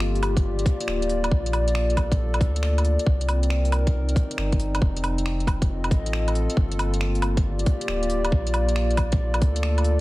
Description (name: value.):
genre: future garage.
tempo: 137 BPM.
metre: 4/4.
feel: swing 67% on 16ths.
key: G minor.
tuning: A4 = 440 Hz.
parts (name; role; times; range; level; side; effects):
dark analog pad; sustained chords; 0.0-10.0 s; Bb3 to Eb5; -27 LUFS; left 1 dB; chorus, sidechain pumping.
warm sub bass; bass; 0.0-10.0 s; D1 to D2; -24 LUFS; equal; sidechain pumping.
organic electronic drum kit; drums; 0.0-10.0 s; finger snaps, hi-hat, woodblock; -31 LUFS; equal; overdrive, vintage 12-bit sampler grit, soft clipping on snare.
electronic kick drum; drums; 0.4-9.5 s; none; -23 LUFS; equal; vintage 12-bit sampler grit.
room: light reverb.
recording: dense, heavily limited modern master, vinyl crackle.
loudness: -20 LUFS.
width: side -18 dB against mid.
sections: 0.0-10.0 A section.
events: none.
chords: 0.0 Gm7; 1.3 Bbmaj7; 3.1 Cm9; 4.8 F7; 6.6 Gm7; 8.3 Bbmaj7.